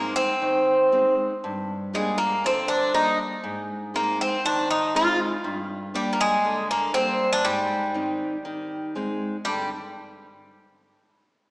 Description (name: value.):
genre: greek folk, Greek bouzouki band.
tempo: 120 BPM.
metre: 4/4.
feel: straight.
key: G phrygian.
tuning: A4 = 440 Hz.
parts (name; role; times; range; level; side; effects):
Greek bouzouki; melody; 0.0-9.7 s; G3 to F4; -22 LUFS; equal; none.
nylon-string guitar; accompaniment; 0.0-9.7 s; G2 to Eb4; -30 LUFS; equal; none.
room: wet concert hall reverb, RT60 2.2 s.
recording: recorded in a church or concert hall, small speaker sound.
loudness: -21 LUFS.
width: side -24 dB against mid.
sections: 0.0-9.5 A section; 9.5-11.5 B section.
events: none.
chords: 0.0 Ab; 1.4 Gm; 3.4 Ab; 5.4 Gm; 7.5 Ab; 9.5 G5.